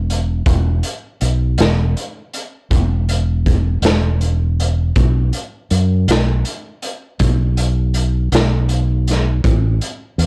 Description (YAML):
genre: slow blues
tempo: 54 BPM (dotted quarters)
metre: 12/8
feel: straight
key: unclear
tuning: A4 = 440 Hz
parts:
  - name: fingered electric bass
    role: bass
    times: 0.0-10.3 s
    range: E1 to F#2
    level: -18 LUFS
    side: equal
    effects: none
  - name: raw garage drum kit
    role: drums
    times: 0.1-10.3 s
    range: hi-hat, kick drum, snare drum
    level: -21 LUFS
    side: equal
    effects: none
room: little or no reverb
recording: home recording on cassette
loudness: -17 LUFS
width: mono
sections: 0.0-10.3 A section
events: none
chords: none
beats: | 0.47 1.59 2.71 3.83 | 4.96 6.08 7.20 8.32 | 9.44